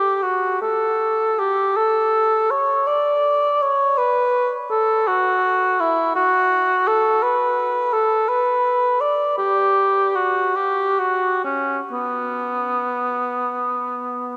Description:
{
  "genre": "classical, free, expressive piece for unaccompanied cor anglais",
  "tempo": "30-58 BPM (dotted quarters)",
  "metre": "6/8",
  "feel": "rubato",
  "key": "B minor",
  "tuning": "A4 = 440 Hz",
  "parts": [
    { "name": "mellow cor anglais", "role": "solo", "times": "0.0-14.4 s", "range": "B3 to D5", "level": "-20 LUFS", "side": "equal", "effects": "none" }
  ],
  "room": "wet cathedral reverb, RT60 4.8 s",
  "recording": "none",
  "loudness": "-20 LUFS",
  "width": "mono",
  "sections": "0.0-14.4 A section",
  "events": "none",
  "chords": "none"
}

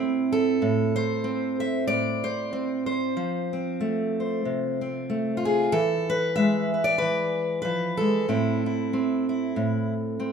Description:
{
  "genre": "folk, solo fingerstyle acoustic guitar",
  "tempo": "94 BPM",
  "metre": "4/4",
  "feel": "swing 56% on 8ths",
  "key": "A harmonic minor",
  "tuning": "A4 = 440 Hz",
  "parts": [
    { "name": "fingerpicked steel-string acoustic guitar", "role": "solo", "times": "0.0-10.3 s", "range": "A2 to E5", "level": "-23 LUFS", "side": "right 1 dB", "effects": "none" }
  ],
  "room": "moderate recital hall reverb, RT60 1.4 s",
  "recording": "minimal, uncompressed stereo recording",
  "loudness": "-23 LUFS",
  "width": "side -6 dB against mid",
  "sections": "0.6-10.3 A section",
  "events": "none",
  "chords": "0.0 Am; 3.2 F; 5.7 E7; 8.3 Am"
}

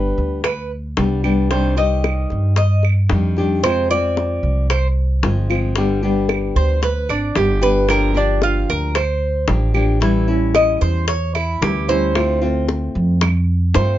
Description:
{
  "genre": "latin, Cuban son and guajira",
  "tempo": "113 BPM",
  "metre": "4/4",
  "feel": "straight",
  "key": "unclear",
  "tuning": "A4 = 440 Hz",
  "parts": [
    { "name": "nylon-string guitar", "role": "accompaniment", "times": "0.0-14.0 s", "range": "C3 to G4", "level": "-21 LUFS", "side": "left 2 dB", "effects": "none" },
    { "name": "Cuban tres", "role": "arpeggios", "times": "0.0-14.0 s", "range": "D4 to Eb5", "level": "-20 LUFS", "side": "right 1 dB", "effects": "none" },
    { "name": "upright bass", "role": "bass", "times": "0.0-14.0 s", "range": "G1 to G2", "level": "-18 LUFS", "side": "equal", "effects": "none" },
    { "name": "bongos", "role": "percussion", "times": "0.4-14.0 s", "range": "none", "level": "-23 LUFS", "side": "left 4 dB", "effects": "none" },
    { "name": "claves", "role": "percussion", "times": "0.4-13.5 s", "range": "none", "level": "-27 LUFS", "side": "right 9 dB", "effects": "none" }
  ],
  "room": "light reverb",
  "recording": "dark, warm production, nothing above 7.5 kHz",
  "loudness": "-15 LUFS",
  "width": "side -13 dB against mid",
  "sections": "0.0-14.0 A section",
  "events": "Cuban tres solo 0.0-14.0",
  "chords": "0.0 G; 1.5 Cmadd9; 3.6 Fm; 5.8 G; 7.9 Gm7; 10.0 A7; 12.2 Dm7"
}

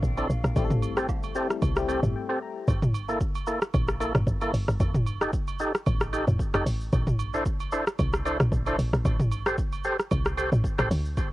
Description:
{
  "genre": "amapiano",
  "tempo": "113 BPM",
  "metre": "4/4",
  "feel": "swing 55% on 16ths",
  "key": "unclear",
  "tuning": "A4 = 439 Hz",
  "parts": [
    { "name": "barking FM electric piano", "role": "accompaniment", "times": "0.0-2.7 s", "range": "E3 to Bb5", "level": "-33 LUFS", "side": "left 6 dB", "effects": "chorus, tremolo" },
    { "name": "tight log drum bass", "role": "bass", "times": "0.0-11.3 s", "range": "F1 to D2", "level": "-28 LUFS", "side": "equal", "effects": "none" },
    { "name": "deep house drum kit", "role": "drums", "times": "0.0-11.3 s", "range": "hi-hat, kick drum, rim click, shaker, toms", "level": "-27 LUFS", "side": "equal", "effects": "cassette tape" },
    { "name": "percussive tonewheel organ", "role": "stabs", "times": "0.2-10.9 s", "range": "Bb3 to C5", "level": "-30 LUFS", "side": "equal", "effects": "fast rotary speaker, tape echo" },
    { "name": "agogo bells and woodblock", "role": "percussion", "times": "0.2-11.3 s", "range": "none", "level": "-40 LUFS", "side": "right 10 dB", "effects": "none" }
  ],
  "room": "light reverb",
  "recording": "home recording on cassette",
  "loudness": "-24 LUFS",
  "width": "side -17 dB against mid",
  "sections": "0.0-2.7 A section; 2.7-11.3 B section",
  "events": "FM electric piano fill 1.6-2.7; break 2.1-2.7; drop 2.7-11.3",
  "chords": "0.0 Bbmaj9#11; 0.6 Am7; 2.7 Gm69; 4.8 F9; 6.9 Bbmaj9#11; 9.1 Am7"
}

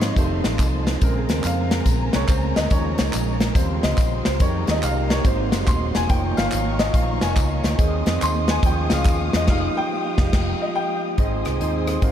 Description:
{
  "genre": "uptempo gospel",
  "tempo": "142 BPM",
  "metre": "4/4",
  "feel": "swing 65% on 8ths",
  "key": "Ab major",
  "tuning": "A4 = 440 Hz",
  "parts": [
    { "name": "clear baby grand piano", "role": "accompaniment", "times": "0.0-12.1 s", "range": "Ab2 to C6", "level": "-26 LUFS", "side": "left 1 dB", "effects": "wide subtle chorus" },
    { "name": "mellow tonewheel organ", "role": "sustained chords", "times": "0.0-12.1 s", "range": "Db3 to Eb5", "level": "-28 LUFS", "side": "right 2 dB", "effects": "slow rotary speaker" },
    { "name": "warm studio string section", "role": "sustained chords", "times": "0.0-12.1 s", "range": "Bb4 to Eb6", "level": "-32 LUFS", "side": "left 1 dB", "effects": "none" },
    { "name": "fingered electric bass", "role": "bass", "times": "0.0-12.1 s", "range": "Eb1 to Ab2", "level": "-24 LUFS", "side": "equal", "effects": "none" },
    { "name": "natural country drum kit", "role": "drums", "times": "0.0-12.1 s", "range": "crash cymbal, hi-hat, kick drum, rim click, snare drum", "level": "-22 LUFS", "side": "equal", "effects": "none" },
    { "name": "tambourine and handclaps", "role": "percussion", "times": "0.0-9.4 s", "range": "none", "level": "-36 LUFS", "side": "right 1 dB", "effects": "none" }
  ],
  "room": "moderate huge ambient reverb, RT60 7.6 s",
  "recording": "dreamy mix soaked in reverb",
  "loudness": "-18 LUFS",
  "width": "side -10 dB against mid",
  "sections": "0.0-11.2 A section",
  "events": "grand piano solo 0.0-11.2; band accent 9.5-11.2",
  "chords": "0.2 F7; 1.0 Bbm9; 2.7 Eb7sus4; 3.6 Eb13; 4.4 Fm11; 5.3 Ab7; 6.1 Db69/F; 7.8 Ab/Eb; 8.6 Eb9sus4; 9.5 Fm9; 11.2 Ab"
}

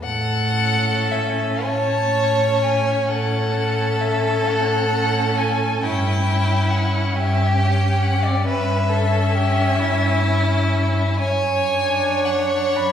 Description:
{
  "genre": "classical, slow romantic movement for string quartet",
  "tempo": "35-46 BPM (dotted quarters)",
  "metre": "12/8",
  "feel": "rubato",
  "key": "A major",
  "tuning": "A4 = 440 Hz",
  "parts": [
    { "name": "rich violin", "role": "melody", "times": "0.0-12.9 s", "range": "D5 to B5", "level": "-24 LUFS", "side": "left 4 dB", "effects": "none" },
    { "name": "clear violin", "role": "second line", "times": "0.0-12.9 s", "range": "E4 to C#5", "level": "-22 LUFS", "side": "left 1 dB", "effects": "none" },
    { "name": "warm cello", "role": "bass", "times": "0.0-12.9 s", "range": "F#2 to A2", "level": "-21 LUFS", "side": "right 1 dB", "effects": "none" },
    { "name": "rich viola", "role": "accompaniment", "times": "0.6-12.9 s", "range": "C#4 to D4", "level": "-27 LUFS", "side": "right 3 dB", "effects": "none" }
  ],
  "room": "wet recital hall reverb, RT60 1.4 s",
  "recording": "recorded in a church or concert hall",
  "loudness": "-17 LUFS",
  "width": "side -9 dB against mid",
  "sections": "0.0-12.9 A section",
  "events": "none",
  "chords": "0.0 A; 5.8 A7/G (rootless); 11.2 D/F#"
}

